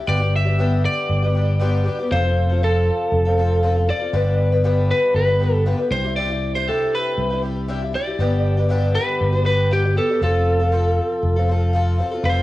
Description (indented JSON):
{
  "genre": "folk rock and heartland rock",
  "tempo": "118 BPM",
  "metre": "4/4",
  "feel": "straight",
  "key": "G mixolydian",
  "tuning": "A4 = 441 Hz",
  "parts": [
    { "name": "picked twelve-string acoustic guitar", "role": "accompaniment", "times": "0.0-12.4 s", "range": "G2 to B4", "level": "-23 LUFS", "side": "left 3 dB", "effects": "cassette tape, plate reverb" },
    { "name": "lightly driven lead guitar", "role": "melody", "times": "0.1-12.4 s", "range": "G4 to E5", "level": "-22 LUFS", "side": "right 1 dB", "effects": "plate reverb, analog delay" },
    { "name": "fingered electric bass", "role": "bass", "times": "0.1-12.4 s", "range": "F1 to C2", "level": "-19 LUFS", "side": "equal", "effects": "none" }
  ],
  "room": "light reverb",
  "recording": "home recording on cassette, small room ambience",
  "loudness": "-17 LUFS",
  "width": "side -16 dB against mid",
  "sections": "0.0-12.2 A section",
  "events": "none",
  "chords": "0.1 G; 2.1 F; 4.1 G; 5.9 Cadd9; 8.2 G; 10.2 F",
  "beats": "| 0.09 0.60 1.10 1.61 | 2.12 2.63 3.13 3.64 | 4.15 4.65 5.16 5.67 | 6.17 6.68 7.18 7.69 | 8.20 8.70 9.21 9.71 | 10.22 10.72 11.23 11.73 | 12.24"
}